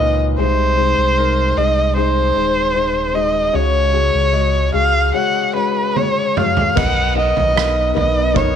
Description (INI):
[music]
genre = pop ballad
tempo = 76 BPM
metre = 4/4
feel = straight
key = unclear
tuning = A4 = 439 Hz
[part]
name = dark erhu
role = melody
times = 0.0-8.6 s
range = B4 to F#5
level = -17 LUFS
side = right 1 dB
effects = none
[part]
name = felt-muted upright piano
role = accompaniment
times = 0.0-8.6 s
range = A#2 to F#5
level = -20 LUFS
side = left 10 dB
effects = none
[part]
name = sub bass with octave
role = bass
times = 0.0-8.6 s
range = D#1 to C#2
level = -19 LUFS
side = right 1 dB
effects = none
[part]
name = loose indie drum kit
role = drums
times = 6.0-8.5 s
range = crash cymbal, kick drum, rim click, toms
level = -21 LUFS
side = right 6 dB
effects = none
[part]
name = shimmering ambient pad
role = sustained chords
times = 7.1-8.6 s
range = B3 to A#4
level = -26 LUFS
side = right 1 dB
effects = chorus, built-in reverb
[sound]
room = light reverb, small room ambience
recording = 1960s-style stereo with parts hard left and right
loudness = -14 LUFS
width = side -8 dB against mid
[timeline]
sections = 0.0-6.8 A section; 6.8-8.6 B section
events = drum fill 6.0-6.8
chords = 0.4 G#/B#; 3.5 C#sus4; 6.8 Bmaj7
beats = | 0.39 1.18 1.97 2.75 | 3.54 4.34 5.14 5.96 | 6.77 7.57 8.36